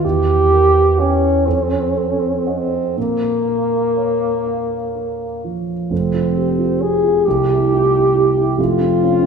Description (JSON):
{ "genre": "classical, romantic duo for French horn and grand piano", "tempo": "39-47 BPM (dotted quarters)", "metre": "6/8", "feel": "rubato", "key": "Bb minor, F minor from 5.9 s", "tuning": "A4 = 438 Hz", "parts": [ { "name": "warm French horn", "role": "melody", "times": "0.0-9.3 s", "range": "Bb3 to Ab4", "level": "-16 LUFS", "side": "equal", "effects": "none" }, { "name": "dark concert grand piano", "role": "accompaniment", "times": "0.0-9.3 s", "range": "F1 to G5", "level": "-18 LUFS", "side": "right 3 dB", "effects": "none" } ], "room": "wet recital hall reverb, RT60 1.5 s", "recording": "recorded in a church or concert hall", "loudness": "-14 LUFS", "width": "side -6 dB against mid", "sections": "0.0-5.9 A section; 5.9-9.3 B section", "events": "none", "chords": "0.0 Edim7; 1.4 F7b9; 3.0 Bbm; 5.9 Fm; 7.3 C; 8.6 F5" }